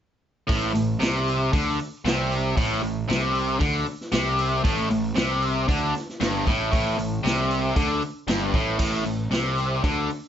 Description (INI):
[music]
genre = blues rock power trio and southern rock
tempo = 116 BPM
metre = 4/4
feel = straight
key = A minor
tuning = A4 = 440 Hz
[part]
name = distorted electric guitar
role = riff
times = 0.5-10.1 s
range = G2 to D3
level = -24 LUFS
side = equal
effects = overdrive
[part]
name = fuzz picked electric bass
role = bass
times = 0.5-10.1 s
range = G1 to D2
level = -28 LUFS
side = equal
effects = overdrive
[part]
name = vintage drum kit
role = drums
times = 0.5-10.2 s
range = crash cymbal, hi-hat, kick drum, snare drum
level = -27 LUFS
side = equal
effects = none
[sound]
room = moderate club reverb, RT60 0.6 s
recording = nothing above 7.7 kHz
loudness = -21 LUFS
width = side -9 dB against mid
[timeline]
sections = 0.5-8.8 A section; 8.8-10.3 B section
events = none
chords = 0.5 Am